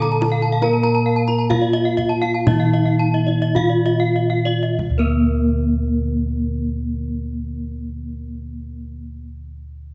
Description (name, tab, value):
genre	Balinese gamelan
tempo	46-77 BPM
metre	4/4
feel	straight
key	unclear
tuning	A4 = 440 Hz
part	gamelan-type bronze metallophone	melody	0.0-9.2 s	Bb3 to Bb4	-24 LUFS	equal	none
part	gamelan-type bronze metallophone	accompaniment	0.0-9.2 s	D3 to Bb3	-27 LUFS	equal	none
part	gamelan-type bronze metallophone	arpeggios	0.0-9.2 s	Bb4 to Bb5	-30 LUFS	equal	none
part	gamelan-type bronze metallophone	arpeggios	0.0-9.2 s	Bb4 to Bb5	-30 LUFS	equal	none
part	gamelan-type bossed gongs	bass	0.0-9.1 s	D2 to Bb4	-24 LUFS	equal	none
part	kendang	percussion	0.0-5.4 s	none	-28 LUFS	equal	none
room	moderate recital hall reverb, RT60 1.4 s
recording	nothing above 7.9 kHz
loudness	-19 LUFS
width	mono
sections	0.0-4.8 A section; 4.8-9.9 B section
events	slowing down 0.0-4.8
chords	none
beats	| 0.63 1.51 2.48 3.56 | 4.79 6.10 7.42 8.73